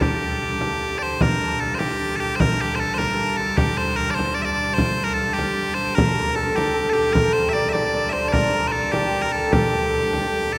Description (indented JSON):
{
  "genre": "medieval dance",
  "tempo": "101 BPM (dotted quarters)",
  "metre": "6/8",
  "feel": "straight",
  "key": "G minor",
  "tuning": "A4 = 438 Hz",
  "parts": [
    { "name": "loud bright bagpipes", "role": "melody", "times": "0.0-10.6 s", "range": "G4 to E5", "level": "-25 LUFS", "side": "equal", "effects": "none" },
    { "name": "rich hurdy-gurdy", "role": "drone", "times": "0.0-10.6 s", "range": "G2 to D3", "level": "-31 LUFS", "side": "equal", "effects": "none" },
    { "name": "frame drum", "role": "percussion", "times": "0.0-10.3 s", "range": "none", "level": "-27 LUFS", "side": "equal", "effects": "none" },
    { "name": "hammered dulcimer", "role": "second line", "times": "6.0-10.6 s", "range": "G4 to D5", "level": "-25 LUFS", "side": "equal", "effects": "none" }
  ],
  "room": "wet cathedral reverb, RT60 6.8 s",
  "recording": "recorded in a church or concert hall",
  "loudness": "-21 LUFS",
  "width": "mono",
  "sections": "0.0-1.2 A section; 1.2-10.6 A section",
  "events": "none",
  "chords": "none"
}